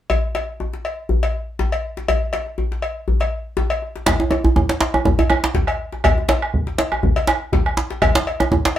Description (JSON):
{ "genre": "west african traditional, West African drum ensemble", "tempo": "121 BPM", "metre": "4/4", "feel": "swing 54% on 16ths", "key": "none", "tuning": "none", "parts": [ { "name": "cowbell", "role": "percussion", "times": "0.1-8.8 s", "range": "none", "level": "-24 LUFS", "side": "left 3 dB", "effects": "none" }, { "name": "djembe", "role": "percussion", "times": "0.1-8.8 s", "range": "none", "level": "-22 LUFS", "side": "left 2 dB", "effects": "none" }, { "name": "bombo", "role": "percussion", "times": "4.1-8.6 s", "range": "none", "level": "-20 LUFS", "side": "right 2 dB", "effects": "none" }, { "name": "djembe", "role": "percussion", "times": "4.1-8.8 s", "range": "none", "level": "-17 LUFS", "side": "right 2 dB", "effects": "none" } ], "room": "moderate studio ambience, RT60 0.5 s", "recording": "band playing live in one room", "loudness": "-17 LUFS", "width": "side -11 dB against mid", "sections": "0.1-4.1 A section; 4.1-8.8 B section", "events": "none", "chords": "none" }